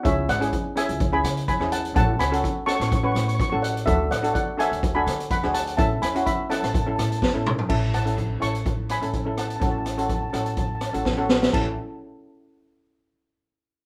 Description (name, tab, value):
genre	calypso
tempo	125 BPM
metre	4/4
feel	swing 54% on 16ths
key	A major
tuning	A4 = 441 Hz
part	steel pan	melody	0.0-11.8 s	A4 to C#6	-30 LUFS	equal	none
part	steel pan	accompaniment	0.0-11.8 s	C#4 to B4	-30 LUFS	equal	none
part	upright bass	bass	0.1-11.8 s	G#1 to D3	-30 LUFS	equal	none
part	street-band drum kit	drums	0.1-11.7 s	crash cymbal, hi-hat, kick drum, rim click, snare drum, toms	-28 LUFS	equal	none
room	moderate small room reverb, RT60 0.5 s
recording	none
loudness	-24 LUFS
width	mono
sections	0.0-7.7 A section; 7.7-11.5 B section; 11.5-13.5 C section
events	drum fill 7.2-7.7, 11.1-11.5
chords	0.0 C#m; 2.0 F#m/A; 3.9 D; 5.8 A; 9.6 F#m/A; 11.5 A